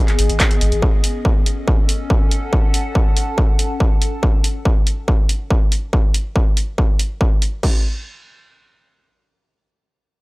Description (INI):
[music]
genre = driving peak-time techno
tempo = 141 BPM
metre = 4/4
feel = straight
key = unclear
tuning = A4 = 440 Hz
[part]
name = warbly tape-like pad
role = texture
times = 0.1-4.2 s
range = B3 to A5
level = -26 LUFS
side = left 2 dB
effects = chorus, built-in reverb, phaser, sidechain pumping
[part]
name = saturated sub bass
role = bass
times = 0.1-0.8 s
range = G#1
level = -20 LUFS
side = equal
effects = overdrive, sidechain pumping, low-pass filter
[part]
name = techno drum kit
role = drums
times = 0.1-7.5 s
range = handclaps, hi-hat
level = -22 LUFS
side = equal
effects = sidechain pumping on hats
[part]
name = techno drum kit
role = drums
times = 0.4-7.7 s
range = crash cymbal, kick drum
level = -16 LUFS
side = equal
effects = distortion
[sound]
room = little or no reverb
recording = dry, gritty hardware recording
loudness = -15 LUFS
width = side -22 dB against mid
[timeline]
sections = 0.0-7.6 A section; 7.6-10.2 B section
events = none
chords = 0.0 G#m; 0.8 F#m; 7.6 N.C.